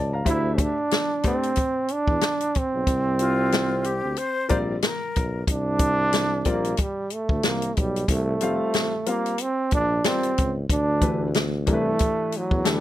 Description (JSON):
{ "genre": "hip hop, jazz-hop", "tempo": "92 BPM", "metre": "4/4", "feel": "swing 60% on 16ths", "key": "unclear", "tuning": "A4 = 440 Hz", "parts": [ { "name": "dark grand piano", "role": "accompaniment", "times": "0.0-12.8 s", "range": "E3 to Bb5", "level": "-27 LUFS", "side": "left 4 dB", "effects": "none" }, { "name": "mellow tuba", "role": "bass", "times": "0.0-12.8 s", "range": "F1 to E2", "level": "-27 LUFS", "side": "equal", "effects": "none" }, { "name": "clear trombone", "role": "melody", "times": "0.3-12.8 s", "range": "F#3 to E4", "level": "-24 LUFS", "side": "right 2 dB", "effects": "none" }, { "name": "open jazz drum kit", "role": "drums", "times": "0.3-12.8 s", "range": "hi-hat, kick drum, snare drum", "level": "-25 LUFS", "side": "left 1 dB", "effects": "none" }, { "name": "breathy silver concert flute", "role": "second line", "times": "3.2-5.4 s", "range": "F4 to C5", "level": "-28 LUFS", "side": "left 4 dB", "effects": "none" } ], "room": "light reverb", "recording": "none", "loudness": "-21 LUFS", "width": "side -13 dB against mid", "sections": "0.0-5.5 A section; 5.5-12.8 B section", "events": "grand piano fill 0.0", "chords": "0.3 D9sus4; 2.9 C9sus4; 10.7 D9sus4" }